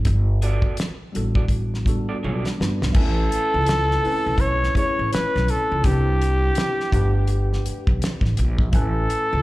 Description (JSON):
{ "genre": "R&B, neo-soul", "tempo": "83 BPM", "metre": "4/4", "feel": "swing 59% on 16ths", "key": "unclear", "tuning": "A4 = 440 Hz", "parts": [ { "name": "mellow tine electric piano", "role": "accompaniment", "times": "0.0-9.4 s", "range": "G3 to G#5", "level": "-29 LUFS", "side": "left 1 dB", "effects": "phaser, slapback echo" }, { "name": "upright bass", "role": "bass", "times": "0.0-9.4 s", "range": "G1 to C#2", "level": "-22 LUFS", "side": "equal", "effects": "none" }, { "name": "damped 70s drum kit", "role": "drums", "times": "0.1-9.3 s", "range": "crash cymbal, hi-hat, kick drum, snare drum", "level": "-23 LUFS", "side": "equal", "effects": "none" }, { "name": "electric guitar through a small old amp", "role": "second line", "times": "0.4-2.5 s", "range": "B3 to D5", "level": "-32 LUFS", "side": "right 4 dB", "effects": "harmonic tremolo, slapback echo" }, { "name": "warm flugelhorn", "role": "melody", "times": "3.0-9.4 s", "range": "G4 to C#5", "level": "-23 LUFS", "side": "equal", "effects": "none" } ], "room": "small room ambience", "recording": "live gig heard through the venue's PA, club reverb", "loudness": "-18 LUFS", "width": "side -18 dB against mid", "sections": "0.0-2.9 A section; 2.9-9.4 B section", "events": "drum fill 2.2-2.9", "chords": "0.1 Gmaj9; 2.9 Amaj9; 5.8 Cmaj9; 6.9 Gmaj9; 8.7 Amaj9", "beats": "| 0.06 0.78 1.50 2.22 | 2.95 3.67 4.39 5.12 | 5.84 6.56 7.28 8.01 | 8.73" }